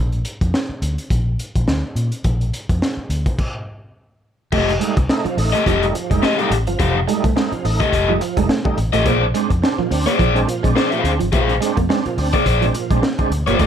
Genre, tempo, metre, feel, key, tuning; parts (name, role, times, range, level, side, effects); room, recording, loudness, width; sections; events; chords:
funk; 106 BPM; 4/4; swing 56% on 16ths; A4 = 442 Hz
vintage muted fingered electric bass; bass; 0.0-13.7 s; F1 to Bb2; -21 LUFS; equal
crunchy breakbeat drum kit; drums; 0.1-13.7 s; crash cymbal, hi-hat, kick drum, snare drum; -21 LUFS; equal
crunchy overdriven guitar; accompaniment; 4.5-13.7 s; G4 to F5; -18 LUFS; left 5 dB
electric guitar at the edge of break-up; riff; 4.5-13.7 s; F3 to Bb3; -24 LUFS; right 7 dB
overdriven tonewheel organ; stabs; 4.5-13.7 s; Bb2 to Eb4; -23 LUFS; right 5 dB; chorus vibrato, slow rotary speaker
light reverb; -16 LUFS; side -9 dB against mid
0.0-4.5 A section; 4.5-13.7 B section
stop 3.4-4.5
0.0 Bb; 4.5 F9; 9.1 Bb9